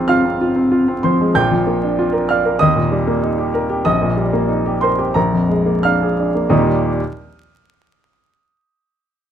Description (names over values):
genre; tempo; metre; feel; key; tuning
classical, virtuoso piano study; 86-97 BPM; 4/4; rubato; Eb major; A4 = 440 Hz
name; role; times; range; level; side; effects
warm baby grand piano; solo; 0.0-7.0 s; Ab1 to G6; -14 LUFS; equal; none
room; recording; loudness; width
light reverb; close, detailed microphones, vinyl crackle; -14 LUFS; side -9 dB against mid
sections
0.0-6.5 A section; 6.5-9.2 B section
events
none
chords
0.0 Fm/Ab; 1.4 Bb; 2.6 Eb; 3.9 Eb/Bb; 5.2 Bb7; 6.5 Eb